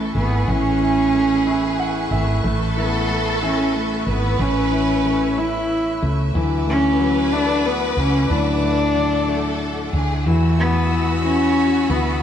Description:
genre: six-eight pop ballad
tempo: 61 BPM (dotted quarters)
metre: 6/8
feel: straight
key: A major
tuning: A4 = 438 Hz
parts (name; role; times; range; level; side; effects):
- dark cello; melody; 0.0-12.2 s; A3 to E4; -20 LUFS; equal; none
- warm symphonic violin section; second line; 0.0-12.2 s; F#4 to B4; -26 LUFS; left 1 dB; none
- warm concert grand piano; accompaniment; 0.0-12.2 s; A2 to F#5; -25 LUFS; left 2 dB; none
- rich studio string section; sustained chords; 0.0-12.2 s; A3 to E6; -30 LUFS; equal; none
- fingerpicked steel-string acoustic guitar; arpeggios; 0.0-12.2 s; A2 to E4; -32 LUFS; left 4 dB; none
- woody fretless electric bass; bass; 0.0-12.2 s; G#1 to E2; -22 LUFS; right 1 dB; none
room: wet stone room reverb, RT60 1.4 s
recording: band playing live in one room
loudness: -17 LUFS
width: side -9 dB against mid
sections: 0.0-12.2 A section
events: grand piano fill 1.5-2.4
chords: 0.0 Aadd9; 6.4 Dadd9; 10.3 Esus4

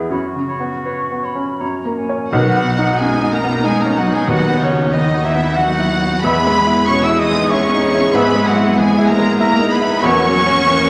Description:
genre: classical, romantic movement for piano and orchestra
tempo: 79-97 BPM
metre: 3/4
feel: rubato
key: B major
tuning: A4 = 438 Hz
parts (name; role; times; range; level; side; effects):
- clear baby grand piano; melody; 0.0-10.9 s; B1 to C#5; -20 LUFS; equal; none
- clear clarinet; second line; 0.0-1.9 s; F#4 to G#4; -29 LUFS; equal; none
- mellow hollow silver concert flute; second line; 0.1-10.9 s; C#5 to E6; -25 LUFS; equal; none
- warm oboe; second line; 0.1-10.9 s; C#4 to E5; -29 LUFS; equal; none
- bright symphonic violin section; melody; 2.3-10.9 s; C#5 to E6; -24 LUFS; equal; none
- warm symphonic violin section; second line; 2.3-10.9 s; C#4 to E5; -30 LUFS; equal; none
- clear symphonic viola section; accompaniment; 2.3-10.9 s; A#3 to G#4; -23 LUFS; equal; none
- dark French horn section; sustained chords; 2.3-10.2 s; A#3 to B4; -30 LUFS; equal; none
- mellow trombone section; sustained chords; 2.3-10.3 s; D#3 to G#3; -27 LUFS; equal; none
- warm trumpet section; stabs; 2.3-10.2 s; C#5 to F#5; -27 LUFS; equal; none
- clear symphonic double bass section; bass; 2.3-10.9 s; G#1 to E2; -31 LUFS; equal; none
- rich symphonic cello section; bass; 2.3-10.9 s; C#3 to E4; -24 LUFS; equal; none
- timpani; percussion; 2.3-3.3 s; none; barely audible; none; none
room: wet scoring stage reverb, RT60 1.9 s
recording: none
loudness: -15 LUFS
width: mono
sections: 0.0-2.3 A section; 2.3-10.9 B section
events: none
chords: 0.1 F#sus4; 1.6 F#; 2.3 B; 4.3 B/D#; 6.2 E; 8.1 E/G#; 10.0 F#7/E

